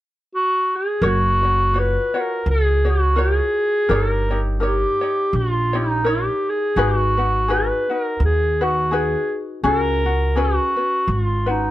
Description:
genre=Hawaiian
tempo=84 BPM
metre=4/4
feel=swing 56% on 8ths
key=F# major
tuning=A4 = 440 Hz
part: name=mellow clarinet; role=melody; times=0.4-11.7 s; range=D#4 to B4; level=-20 LUFS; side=equal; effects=plate reverb
part: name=ukulele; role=accompaniment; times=1.0-11.7 s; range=C#4 to C#5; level=-24 LUFS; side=left 2 dB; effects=none
part: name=upright bass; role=bass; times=1.0-11.7 s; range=F#1 to D#2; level=-20 LUFS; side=equal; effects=none
room=light reverb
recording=none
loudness=-17 LUFS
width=side -14 dB against mid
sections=0.0-1.0 A section; 1.0-11.7 B section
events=none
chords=0.0 N.C.; 1.0 F#maj7; 3.9 D#7/G; 6.8 G#m7; 9.6 C#7sus4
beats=0.31 | 1.03 1.75 2.46 3.18 | 3.90 4.62 5.33 6.05 | 6.77 7.49 8.21 8.93 | 9.64 10.36 11.08

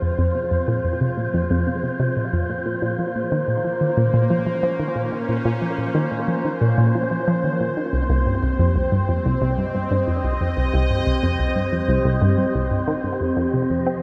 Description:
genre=ambient, sequencer-driven space music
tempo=91 BPM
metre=4/4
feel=straight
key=F minor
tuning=A4 = 440 Hz
part: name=sweeping resonant pad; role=sustained chords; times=0.0-14.0 s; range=F3 to Eb5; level=-28 LUFS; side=equal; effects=chorus, shimmer reverb
part: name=analog pluck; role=riff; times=0.0-13.9 s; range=C2 to C4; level=-23 LUFS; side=equal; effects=chorus, phaser, tape echo
part: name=wind-like tuned noise texture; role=texture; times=0.0-14.0 s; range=C5 to Eb5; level=-30 LUFS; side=equal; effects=built-in reverb, shimmer reverb
room=wet lush hall reverb, RT60 2.9 s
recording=dreamy mix soaked in reverb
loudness=-21 LUFS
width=mono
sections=0.0-14.0 A section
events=fade-in on analog synth pad 0.0-14.0; filter sweep on synth arpeggio sound 0.0-14.0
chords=0.0 Fm; 2.7 Bbm; 7.9 Cm7; 13.2 Fsus2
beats=| 0.02 0.68 1.34 2.00 | 2.66 3.32 3.98 4.63 | 5.29 5.95 6.61 7.27 | 7.93 8.59 9.25 9.91 | 10.57 11.23 11.89 12.55 | 13.21 13.87

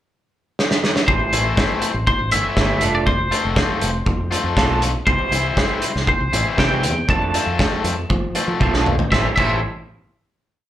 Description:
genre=indie rock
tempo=119 BPM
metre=4/4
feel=straight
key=A minor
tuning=A4 = 442 Hz
part: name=loose indie drum kit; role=drums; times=0.6-9.5 s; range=crash cymbal, hi-hat, kick drum, snare drum, toms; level=-20 LUFS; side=equal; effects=none
part: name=twangy electric guitar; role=melody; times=1.1-9.6 s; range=C5 to A5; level=-22 LUFS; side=equal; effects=tremolo, slapback echo
part: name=electric guitar through a small old amp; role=riff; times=1.1-9.6 s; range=A2 to C5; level=-26 LUFS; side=right 6 dB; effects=lush chorus, slapback echo
part: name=fingered electric bass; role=bass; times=1.1-9.6 s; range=F1 to F3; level=-23 LUFS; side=equal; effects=none
part: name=biting overdriven guitar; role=riff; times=1.3-9.6 s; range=A2 to A4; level=-24 LUFS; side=left 5 dB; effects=slapback echo
room=light reverb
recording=live gig heard through the venue's PA, club reverb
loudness=-16 LUFS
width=side -12 dB against mid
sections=0.0-1.1 pickup bar; 1.1-9.1 verse; 9.1-10.7 final chord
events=drum fill 0.6-1.1, 8.6-9.1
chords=0.0 N.C.; 1.1 Am7; 2.8 F6; 5.1 C; 7.1 F6; 9.1 Am7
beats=0.09 0.58 | 1.08 1.58 2.08 2.58 | 3.07 3.57 4.07 4.57 | 5.07 5.58 6.08 6.58 | 7.09 7.60 8.11 8.61 | 9.12

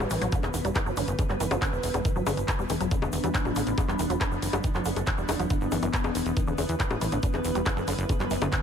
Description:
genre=psychedelic trance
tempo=139 BPM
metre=4/4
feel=straight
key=unclear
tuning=A4 = 441 Hz
part: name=pulsing gated texture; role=sustained chords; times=0.0-8.6 s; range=B3 to B4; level=-33 LUFS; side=equal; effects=chorus, built-in reverb, sidechain pumping
part: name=wide unison pluck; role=riff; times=0.0-8.6 s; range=D3 to G3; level=-31 LUFS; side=moving between left 4 dB and right 5 dB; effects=auto-pan, sidechain pumping, dub echo
part: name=plucky analog bass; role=bass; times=0.0-8.5 s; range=E1 to E2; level=-31 LUFS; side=equal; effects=none
part: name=drum and bass drum kit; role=drums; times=0.0-8.6 s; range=bongos, handclaps, hi-hat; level=-32 LUFS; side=left 3 dB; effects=none
part: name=egg shaker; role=percussion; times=0.0-8.6 s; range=none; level=-44 LUFS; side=right 4 dB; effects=none
part: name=ethereal airy pad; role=texture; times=0.6-8.6 s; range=E4 to B5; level=-42 LUFS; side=equal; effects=none
part: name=electronic kick drum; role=drums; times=0.3-8.6 s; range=none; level=-28 LUFS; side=equal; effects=none
room=light reverb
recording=none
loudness=-25 LUFS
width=side -8 dB against mid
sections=0.0-8.6 A section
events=filter sweep on synth arpeggio sound 0.0-8.6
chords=0.0 E5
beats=0.32 0.76 | 1.19 1.62 2.05 2.48 | 2.91 3.35 3.78 4.21 | 4.64 5.07 5.50 5.93 | 6.37 6.80 7.23 7.66 | 8.09 8.53

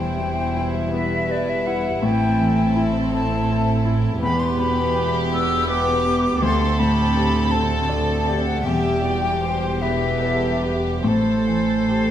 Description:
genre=cinematic, emotional film score for orchestra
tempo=47-56 BPM (dotted quarters)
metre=6/8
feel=rubato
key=E minor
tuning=A4 = 441 Hz
part: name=warm symphonic violin section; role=melody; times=0.0-12.1 s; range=G4 to E5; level=-30 LUFS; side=left 3 dB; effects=none
part: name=clear studio violin section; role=second line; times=0.0-12.1 s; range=E4 to A4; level=-28 LUFS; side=left 1 dB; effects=none
part: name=silver concert flute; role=second line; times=0.0-12.1 s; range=C5 to E6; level=-25 LUFS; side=left 2 dB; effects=none
part: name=dark symphonic viola section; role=accompaniment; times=0.0-12.1 s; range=G3 to C4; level=-29 LUFS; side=right 2 dB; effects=none
part: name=warm grand piano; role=accompaniment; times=0.0-12.1 s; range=D2 to D5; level=-23 LUFS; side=left 1 dB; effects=none
part: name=dark symphonic double bass section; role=bass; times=0.0-12.1 s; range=E1 to D2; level=-28 LUFS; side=right 3 dB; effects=none
part: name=warm symphonic cello section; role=bass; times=0.0-12.1 s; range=D2 to A2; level=-27 LUFS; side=right 2 dB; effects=none
room=wet recital hall reverb, RT60 1.7 s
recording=none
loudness=-18 LUFS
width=side -10 dB against mid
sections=0.0-12.1 A section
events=none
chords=0.0 Em; 2.0 Am7; 4.2 Em; 6.4 D7sus4; 8.7 Em; 11.1 Am7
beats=0.95 | 2.04 3.13 | 4.22 5.31 | 6.42 7.53 | 8.65 9.81 | 11.05

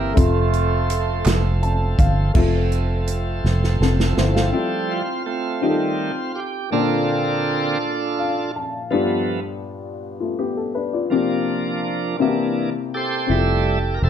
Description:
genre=slow gospel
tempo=55 BPM (dotted quarters)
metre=6/8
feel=straight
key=F major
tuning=A4 = 439 Hz
part: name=warm horn section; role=melody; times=0.0-1.6 s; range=A3 to Bb4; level=-24 LUFS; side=right 5 dB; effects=none
part: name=warm upright piano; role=accompaniment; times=0.0-14.1 s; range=G2 to A5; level=-24 LUFS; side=left 5 dB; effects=none
part: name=bright tonewheel organ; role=sustained chords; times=0.0-14.1 s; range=D3 to E5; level=-23 LUFS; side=right 3 dB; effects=fast rotary speaker, overdrive
part: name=fingered electric bass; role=bass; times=0.0-4.5, 13.3-14.1 s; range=E1 to G1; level=-19 LUFS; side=equal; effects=none
part: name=natural country drum kit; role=drums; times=0.2-4.5 s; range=crash cymbal, hi-hat, kick drum, snare drum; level=-21 LUFS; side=right 1 dB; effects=none
part: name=group handclap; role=percussion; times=1.3-1.6 s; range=none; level=-32 LUFS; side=right 5 dB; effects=none
room=moderate large studio reverb, RT60 0.8 s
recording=dark, warm production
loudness=-18 LUFS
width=side -9 dB against mid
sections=0.0-2.4 A section; 2.4-4.5 B section; 4.5-14.1 C section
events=upright piano fill 1.3-2.4, 7.8-8.9; drum fill 3.5-4.5; tonewheel organ solo 4.5-14.1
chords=0.2 F; 5.6 F7; 6.7 Bbmaj7; 8.9 G7; 11.1 C7sus4; 12.2 C7; 13.3 Fmaj7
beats=| 0.18 1.27 | 2.36 3.45 | 4.54 5.63 | 6.73 7.82 | 8.92 10.01 | 11.11 12.20 | 13.30

